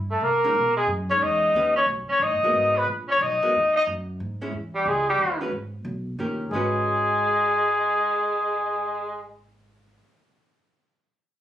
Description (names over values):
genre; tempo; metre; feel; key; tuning
jazz, small-group swing and bop; 181 BPM; 3/4; swing 65% on 8ths; G# minor; A4 = 439 Hz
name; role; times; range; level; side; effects
upright bass; bass; 0.0-10.0 s; D#1 to C3; -33 LUFS; right 1 dB; none
mellow trumpet; melody; 0.1-9.3 s; G4 to D#5; -21 LUFS; left 1 dB; none
bright tenor saxophone; second line; 0.1-9.3 s; G3 to D#4; -28 LUFS; right 2 dB; none
archtop guitar, miked and amplified; accompaniment; 0.4-10.0 s; D#3 to B4; -30 LUFS; equal; none
room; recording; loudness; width
moderate studio reverb, RT60 0.7 s; recorded on a phone in the room, studio ambience, compression; -21 LUFS; side -11 dB against mid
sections
0.0-4.5 A section; 4.5-6.5 B section; 6.5-8.5 C section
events
none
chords
0.0 C7(no3); 0.6 B69; 1.5 D#7b13; 2.5 G#m9; 4.5 C#dim; 5.2 D#7; 5.5 G#m; 6.2 D#7; 6.5 G#m7